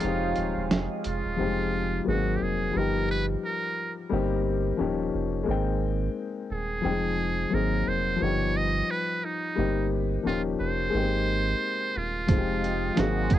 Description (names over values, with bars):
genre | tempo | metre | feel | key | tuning
lo-fi hip hop | 88 BPM | 4/4 | swing 57% on 16ths | F minor | A4 = 440 Hz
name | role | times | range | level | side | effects
trumpet with metal mute | melody | 0.0-13.4 s | D#4 to D#5 | -30 LUFS | right 2 dB | low-pass filter
dark upright piano | accompaniment | 0.0-13.4 s | F3 to G5 | -28 LUFS | left 6 dB | cassette tape, low-pass filter
warbly tape-like pad | sustained chords | 0.0-1.4, 12.5-13.4 s | Ab3 to D#6 | -35 LUFS | right 5 dB | chorus, built-in reverb, phaser, low-pass filter, cassette tape
soft dub sub bass | bass | 0.0-13.4 s | Eb1 to Ab1 | -30 LUFS | right 2 dB | none
dusty soul sampler-style drum kit | drums | 0.0-1.2, 12.3-13.4 s | hi-hat, kick drum, snare drum | -24 LUFS | right 2 dB | overdrive, cassette tape
room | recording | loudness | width
light reverb | home recording on cassette | -25 LUFS | side -12 dB against mid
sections
0.0-1.4 A section; 1.4-13.4 B section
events
break 0.0-1.4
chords
0.0 Fm9; 2.1 Ab9; 2.7 Gaug7; 4.1 Cm7/G; 4.8 Eb9; 5.5 Abmaj9; 6.8 Fm9; 7.5 Ab9; 8.2 Gaug7; 9.6 Cm7/G; 10.2 Eb9; 10.9 Abmaj9; 12.3 Fm9